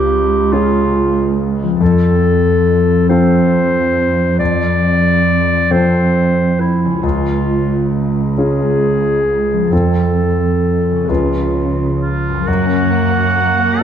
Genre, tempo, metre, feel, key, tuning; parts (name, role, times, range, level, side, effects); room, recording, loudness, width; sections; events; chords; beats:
cinematic, emotional film score for orchestra; 43-47 BPM (dotted quarters); 6/8; rubato; A4 = 440 Hz
warm clarinet; second line; 0.0-12.5 s; E4 to D5; -17 LUFS; equal
warm grand piano; accompaniment; 0.0-13.8 s; Db2 to Cb5; -18 LUFS; left 2 dB
concert harp; arpeggios; 0.0-13.8 s; F#2 to Cb5; -22 LUFS; left 8 dB
muted studio cello section; bass; 0.0-13.8 s; Db2 to Db3; -16 LUFS; right 3 dB
warm oboe; second line; 12.0-13.8 s; F4 to F#4; -17 LUFS; right 4 dB
muted studio violin section; melody; 12.5-13.8 s; F#5; -24 LUFS; left 4 dB
muted studio violin section; second line; 12.5-13.8 s; A#3 to C#4; -23 LUFS; left 4 dB
muted studio viola section; accompaniment; 12.5-13.8 s; A#3; -22 LUFS; right 2 dB
moderate scoring stage reverb, RT60 2.0 s; dark, warm production; -12 LUFS; side -9 dB against mid
0.0-12.5 A section; 12.5-13.8 A section
0.0 Db; 1.8 F; 7.0 Db; 9.7 F; 11.1 Db7; 12.5 F#
0.52 | 1.81 3.09 | 4.40 5.71 | 7.03 8.37 | 9.71 11.09 | 12.47 13.81